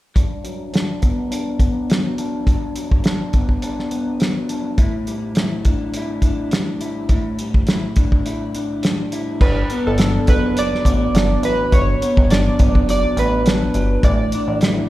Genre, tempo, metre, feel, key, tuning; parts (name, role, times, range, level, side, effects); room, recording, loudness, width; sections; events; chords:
indie pop, bedroom pop; 104 BPM; 4/4; swing 55% on 16ths; G major; A4 = 438 Hz
electric guitar through a small old amp; accompaniment; 0.2-14.9 s; G2 to E4; -22 LUFS; left 1 dB; vibrato effect, low-pass filter
cloth-damped thuddy drum kit; drums; 0.2-14.8 s; crash cymbal, hi-hat, kick drum, snare drum; -18 LUFS; equal
chorused retro synth keys; melody; 9.4-14.6 s; A4 to D5; -21 LUFS; right 2 dB; tremolo
chorused synth bass; bass; 9.4-14.8 s; F#1 to A1; -21 LUFS; equal
light reverb; -16 LUFS; side -16 dB against mid
0.2-9.4 A section; 9.4-14.9 B section
filter sweep on clean electric guitar 0.2-9.4
0.2 Gmaj7; 4.8 A7sus4; 9.4 Gmaj7; 14.0 Asus4